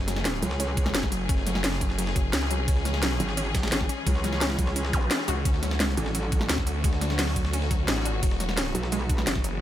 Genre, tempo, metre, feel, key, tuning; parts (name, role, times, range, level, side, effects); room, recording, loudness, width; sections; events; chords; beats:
dark technical drum and bass; 173 BPM; 4/4; straight; F# minor; A4 = 438 Hz
clear symphonic string section; sustained chords; 0.0-9.6 s; D3 to G#4; -34 LUFS; left 2 dB; sidechain pumping
wide unison pluck; arpeggios; 0.0-9.6 s; F#3 to F#4; -34 LUFS; moving between left 6 dB and right 4 dB; auto-pan, sidechain pumping, digital delay
snarling distorted saw bass; bass; 0.0-3.2, 5.3-9.6 s; E1 to D2; -28 LUFS; equal; distortion, overdrive, sidechain pumping
breakbeat sampler-style drum kit; drums; 0.1-9.5 s; hi-hat, ride cymbal, snare drum; -37 LUFS; right 1 dB; high-pass filter on cymbals, high-pass filter on snare, high-pass filter on hats
drum and bass drum kit; drums; 0.1-9.5 s; hi-hat, snare drum; -29 LUFS; equal
metallic wobble bass; bass; 0.4-0.9, 3.2-6.5, 8.7-9.3 s; G#1 to C#2; -28 LUFS; equal; distortion, chorus
electronic kick drum; drums; 0.8-9.4 s; -26 LUFS; equal
zap; sound effects; 4.9-5.0 s; -36 LUFS; equal
little or no reverb; -23 LUFS; side -12 dB against mid
0.0-9.6 A section
0.0 F#madd9; 2.7 C#m; 5.5 Dmaj7; 8.2 Eadd9
0.25 0.60 0.94 | 1.29 1.64 1.99 2.33 | 2.68 3.03 3.37 3.72 | 4.07 4.41 4.76 5.11 | 5.45 5.80 6.15 6.49 | 6.84 7.19 7.54 7.88 | 8.23 8.57 8.92 9.27